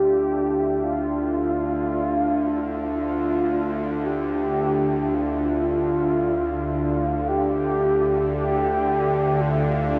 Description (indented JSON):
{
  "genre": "ambient",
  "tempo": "free time",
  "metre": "none",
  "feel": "none",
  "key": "D minor",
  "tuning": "A4 = 438 Hz",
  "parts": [
    { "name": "mellow horn-like synth lead", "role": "melody", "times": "0.0-10.0 s", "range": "F4 to G4", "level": "-25 LUFS", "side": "equal", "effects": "lush chorus, delay" },
    { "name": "deep dark ambient pad", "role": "sustained chords", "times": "0.0-10.0 s", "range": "D4 to A5", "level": "-28 LUFS", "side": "equal", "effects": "chorus, built-in reverb" },
    { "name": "bowed-like drone", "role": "drone", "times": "0.0-10.0 s", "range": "D2 to D3", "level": "-30 LUFS", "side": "equal", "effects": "built-in reverb" }
  ],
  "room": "wet huge ambient reverb, RT60 7.6 s",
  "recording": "none",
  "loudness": "-23 LUFS",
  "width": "mono",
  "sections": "0.0-10.0 A section",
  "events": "none",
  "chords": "0.0 Dmadd9"
}